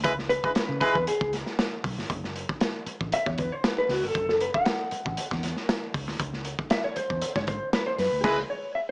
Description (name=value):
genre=funk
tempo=117 BPM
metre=4/4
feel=straight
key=unclear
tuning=A4 = 444 Hz
part: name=warm horn section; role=second line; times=0.0-1.0, 8.2-8.4 s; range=G#3 to B4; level=-25 LUFS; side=equal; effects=none
part: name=vintage muted fingered electric bass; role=bass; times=0.0-8.4 s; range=F#1 to C#3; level=-34 LUFS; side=equal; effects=none
part: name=crunchy breakbeat drum kit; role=drums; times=0.0-8.4 s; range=crash cymbal, hi-hat, kick drum, snare drum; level=-29 LUFS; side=equal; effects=none
part: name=mellow electric guitar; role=accompaniment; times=0.3-8.9 s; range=F#4 to F#5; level=-27 LUFS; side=equal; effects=wide subtle chorus, plate reverb
room=light reverb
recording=small speaker sound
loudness=-25 LUFS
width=side -27 dB against mid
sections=0.0-8.9 A section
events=clean electric guitar solo 0.0-8.9; band accent 0.0-2.1, 8.2-8.9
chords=0.0 C#7(no3); 2.1 F#m7; 6.2 C#m7